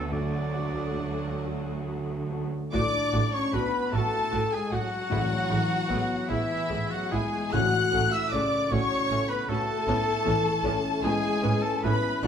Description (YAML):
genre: cinematic, emotional film score for orchestra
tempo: 43-52 BPM (dotted quarters)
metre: 6/8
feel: rubato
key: A major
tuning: A4 = 439 Hz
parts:
  - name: rich studio violin section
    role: melody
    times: 0.0-12.3 s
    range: E5 to F#6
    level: -33 LUFS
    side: left 3 dB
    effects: none
  - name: clear oboe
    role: second line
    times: 0.0-12.3 s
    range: E4 to F#5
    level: -35 LUFS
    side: right 2 dB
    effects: none
  - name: warm studio violin section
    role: second line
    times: 0.0-12.3 s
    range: E4 to F#5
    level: -34 LUFS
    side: left 4 dB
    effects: none
  - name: felt-muted upright piano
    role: accompaniment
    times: 0.0-12.3 s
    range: D2 to B4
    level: -33 LUFS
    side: left 2 dB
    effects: none
  - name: rich studio viola section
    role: accompaniment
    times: 0.0-12.3 s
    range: C#3 to F#4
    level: -36 LUFS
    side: right 2 dB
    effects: none
  - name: rich studio cello section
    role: bass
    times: 0.0-12.3 s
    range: D2 to A2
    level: -34 LUFS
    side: right 3 dB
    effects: none
  - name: rich studio double bass section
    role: bass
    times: 0.0-12.3 s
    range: A1 to D2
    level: -34 LUFS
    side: right 4 dB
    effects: none
  - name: mellow hollow concert flute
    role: second line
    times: 2.7-12.3 s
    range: E5 to F#6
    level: -32 LUFS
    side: left 2 dB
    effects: none
  - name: mellow French horn section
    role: sustained chords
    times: 2.7-12.3 s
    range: E3 to D5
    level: -32 LUFS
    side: left 3 dB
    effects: none
  - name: timpani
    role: percussion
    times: 5.1-8.7 s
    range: A2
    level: -34 LUFS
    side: left 2 dB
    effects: none
room: wet recital hall reverb, RT60 1.5 s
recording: minimal, uncompressed stereo recording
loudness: -24 LUFS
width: side -8 dB against mid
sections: 0.0-2.7 A section; 2.7-12.3 B section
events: none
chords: 0.0 D; 2.7 D/A; 5.1 E/A; 7.5 F#m/A; 9.9 Aadd9